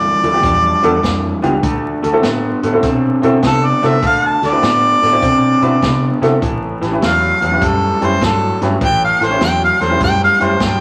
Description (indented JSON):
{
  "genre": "electric blues shuffle",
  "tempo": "100 BPM",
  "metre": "4/4",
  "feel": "swing 67% on 8ths",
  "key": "D mixolydian",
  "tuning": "A4 = 445 Hz",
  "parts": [
    { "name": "warm harmonica", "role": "melody", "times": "0.0-10.8 s", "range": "A4 to A5", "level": "-17 LUFS", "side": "equal", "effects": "none" },
    { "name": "electric guitar through a small old amp", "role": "riff", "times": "0.0-10.8 s", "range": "G2 to C4", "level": "-20 LUFS", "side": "equal", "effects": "none" },
    { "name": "vintage muted fingered electric bass", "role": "bass", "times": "0.0-10.8 s", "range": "A1 to C3", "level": "-24 LUFS", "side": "equal", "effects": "none" },
    { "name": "clear upright piano", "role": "accompaniment", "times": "0.2-10.5 s", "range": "B3 to C#5", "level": "-22 LUFS", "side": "equal", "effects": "none" },
    { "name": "vintage drum kit", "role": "drums", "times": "0.2-10.8 s", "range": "hi-hat, kick drum, snare drum", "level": "-25 LUFS", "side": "equal", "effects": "none" }
  ],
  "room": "wet large studio reverb, RT60 1.3 s",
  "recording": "vinyl crackle",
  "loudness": "-14 LUFS",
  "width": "mono",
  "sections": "0.0-10.8 A section",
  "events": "harmonica solo 0.0-10.8",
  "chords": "0.0 G7; 1.6 D7; 6.4 A7"
}